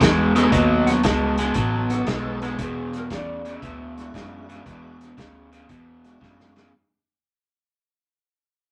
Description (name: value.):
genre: electric blues shuffle.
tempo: 116 BPM.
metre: 4/4.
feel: swing 67% on 8ths.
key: E mixolydian.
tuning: A4 = 440 Hz.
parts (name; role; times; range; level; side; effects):
crunchy overdriven guitar; riff; 0.0-6.7 s; E2 to G#3; -25 LUFS; equal; none.
vintage muted fingered electric bass; bass; 0.0-6.7 s; E1 to F#2; -28 LUFS; equal; none.
vintage drum kit; drums; 0.0-6.7 s; hi-hat, kick drum, snare drum; -26 LUFS; equal; none.
tonewheel organ; accompaniment; 0.4-6.7 s; G#3 to A4; -31 LUFS; equal; chorus vibrato, slow rotary speaker.
clean lap steel guitar; melody; 0.5-6.2 s; G#4 to A5; -33 LUFS; equal; none.
room: moderate small room reverb, RT60 0.6 s.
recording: none.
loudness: -21 LUFS.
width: mono.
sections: 0.0-6.7 A section.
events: fade-out 0.0-6.7; drum fill 6.2-6.7.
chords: 0.0 B9; 2.6 E9.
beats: 0.01 | 0.52 1.04 1.56 2.07 | 2.59 3.11 3.62 4.14 | 4.66 5.17 5.69 6.21.